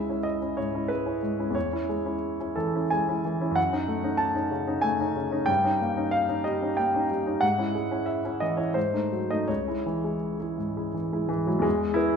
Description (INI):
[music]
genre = classical, romantic character piece for solo piano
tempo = 80-95 BPM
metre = 3/4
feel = rubato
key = C# minor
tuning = A4 = 440 Hz
[part]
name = clear grand piano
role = solo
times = 0.0-12.2 s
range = C#2 to A5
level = -24 LUFS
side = equal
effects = none
[sound]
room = wet recital hall reverb, RT60 1.6 s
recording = minimal, uncompressed stereo recording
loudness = -24 LUFS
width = side -6 dB against mid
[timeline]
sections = 0.0-11.7 A section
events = none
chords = 0.0 C#m; 1.5 C#m/E; 3.6 D#m7b5/F#; 5.5 D#7/G; 7.4 C#m/G#; 8.8 G#7b9; 9.5 C#m; 11.7 E